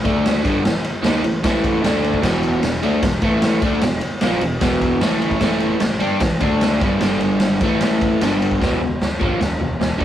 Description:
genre	garage rock duo or trio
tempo	151 BPM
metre	4/4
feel	straight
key	unclear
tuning	A4 = 440 Hz
part	crunchy overdriven guitar	riff	0.0-10.0 s	E2 to G4	-19 LUFS	equal	none
part	fuzz fingered electric bass	bass	0.0-10.0 s	E1 to G2	-24 LUFS	equal	overdrive
part	raw garage drum kit	drums	0.1-10.0 s	crash cymbal, kick drum, ride cymbal, snare drum, toms	-20 LUFS	equal	none
room	light reverb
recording	rough rehearsal-room recording, warm saturation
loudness	-16 LUFS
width	side -11 dB against mid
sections	0.0-8.6 A section; 8.6-10.0 B section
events	none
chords	0.0 D5; 0.4 A5; 1.8 D5; 2.2 E5; 3.2 A5; 3.6 E5; 5.0 A5; 6.4 D5; 6.8 G5; 7.6 A5; 8.2 G5; 8.6 E5

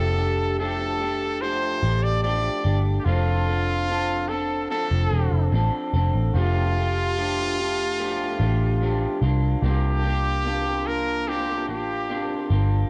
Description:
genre	indie pop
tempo	73 BPM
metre	4/4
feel	straight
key	F major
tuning	A4 = 443 Hz
part	brilliant trumpet	melody	0.0-12.5 s	F4 to D5	-29 LUFS	equal	lush chorus
part	electric guitar through a small old amp	accompaniment	0.0-12.9 s	C3 to A4	-30 LUFS	equal	subtle chorus, vibrato effect, plate reverb
part	vintage muted picked electric bass	bass	0.0-12.8 s	E1 to C2	-25 LUFS	equal	transformer saturation
room	moderate small room ambience, RT60 0.5 s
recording	worn, warbling old tape, cassette tape, warbly pitch drift, nothing above 10.5 kHz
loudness	-24 LUFS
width	mono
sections	0.0-6.3 A section; 6.3-12.9 A section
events	none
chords	0.0 F69; 3.1 F6; 6.3 F69; 9.2 C9sus4

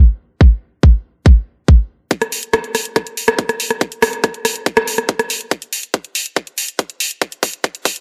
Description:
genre	trance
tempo	141 BPM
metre	4/4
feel	straight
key	none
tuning	none
part	electronic kick drum	drums	0.4-7.9 s	none	-12 LUFS	equal	high-pass filter on kick
part	garage drum kit	drums	2.1-8.0 s	hi-hat, rim click	-19 LUFS	equal	none
room	light reverb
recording	low-pass filter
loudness	-17 LUFS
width	mono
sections	0.0-2.1 A section; 2.1-8.0 B section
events	filter sweep 0.0-2.1; build-up 2.1-8.0; drum fill 5.5-8.0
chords	none

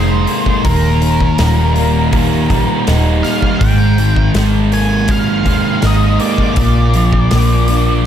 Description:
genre	rock, shoegaze and dream pop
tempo	81 BPM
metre	4/4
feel	straight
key	Eb major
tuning	A4 = 440 Hz
part	octave-fuzz lead guitar	melody	0.0-8.1 s	Bb4 to Ab5	-20 LUFS	equal	distortion, analog delay
part	thick fuzz guitar	riff	0.0-8.1 s	Eb2 to Eb4	-14 LUFS	equal	distortion, lush chorus
part	vintage muted fingered electric bass	bass	0.0-8.1 s	Eb1 to Eb2	-15 LUFS	equal	none
part	big rock drum kit	drums	0.3-7.9 s	hi-hat, kick drum, snare drum	-19 LUFS	equal	none
room	moderate lush hall reverb, RT60 2.4 s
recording	dreamy mix soaked in reverb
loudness	-10 LUFS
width	side -9 dB against mid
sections	0.0-8.1 A section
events	none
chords	0.0 Ab69; 0.7 Eb; 3.6 Absus2; 6.6 Bb

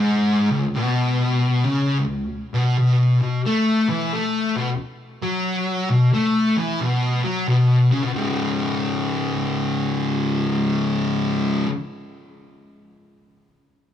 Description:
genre	metal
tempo	89 BPM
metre	4/4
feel	swing 64% on 8ths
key	C# minor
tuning	A4 = 440 Hz
part	thick fuzz guitar	riff	0.0-11.7 s	C#2 to A3	-18 LUFS	left 1 dB	distortion
room	moderate plate reverb, RT60 3.7 s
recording	small room ambience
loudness	-18 LUFS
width	side -10 dB against mid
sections	0.0-8.2 A section; 8.2-10.9 B section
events	none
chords	0.0 C#5; 2.8 B5; 8.2 C#5

